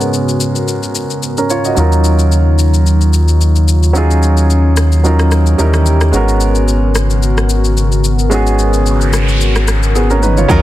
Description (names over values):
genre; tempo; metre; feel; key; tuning
amapiano; 110 BPM; 4/4; swing 55% on 16ths; unclear; A4 = 440 Hz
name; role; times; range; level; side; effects
warm grand piano; accompaniment; 0.0-10.6 s; Gb3 to Eb5; -16 LUFS; right 2 dB; low-pass filter
hollow soft pad; sustained chords; 0.0-10.6 s; Ab2 to Bb4; -19 LUFS; left 2 dB; chorus, low-pass filter
glitchy drum kit; drums; 0.0-10.6 s; kick drum, rim click, shaker, toms; -21 LUFS; left 2 dB; overdrive
sub bass with octave; bass; 1.8-10.5 s; Ab1 to Eb2; -11 LUFS; equal; none
noise sweep; sound effects; 8.7-10.5 s; none; -23 LUFS; right 1 dB; none
woody log drum bass; bass; 10.5-10.6 s; Eb2; -11 LUFS; equal; none
room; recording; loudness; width
little or no reverb; dense, heavily limited modern master; -10 LUFS; side -14 dB against mid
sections
0.0-10.5 A section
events
filter sweep 0.0-10.5; noise sweep 8.7-10.5; drum fill 10.0-10.5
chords
0.0 Abm11; 1.8 Ebm9; 5.6 Eb7b9; 6.1 Abm11